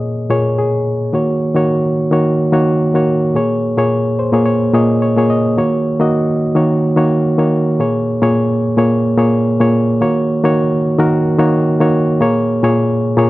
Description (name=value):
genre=disco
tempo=108 BPM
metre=4/4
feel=straight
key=Eb minor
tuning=A4 = 440 Hz
part: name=reed electric piano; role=solo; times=0.0-13.3 s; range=Bb2 to Eb5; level=-12 LUFS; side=equal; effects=none
room=light reverb, digital ambience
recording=none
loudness=-12 LUFS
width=side -18 dB against mid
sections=0.0-1.1 A section; 1.1-10.0 B section; 10.0-13.3 C section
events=reed electric piano fill 0.3-1.1, 3.9-5.6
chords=0.0 Bbm7; 1.1 Ebm7; 3.4 Bbm7; 5.6 Ebm7; 7.8 Bbm7; 10.0 Ebm7; 12.2 Bbm7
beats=0.02 0.58 | 1.13 1.69 2.24 2.80 | 3.36 3.91 4.47 5.03 | 5.58 6.14 6.69 7.25 | 7.80 8.35 8.90 9.46 | 10.01 10.56 11.11 11.65 | 12.20 12.75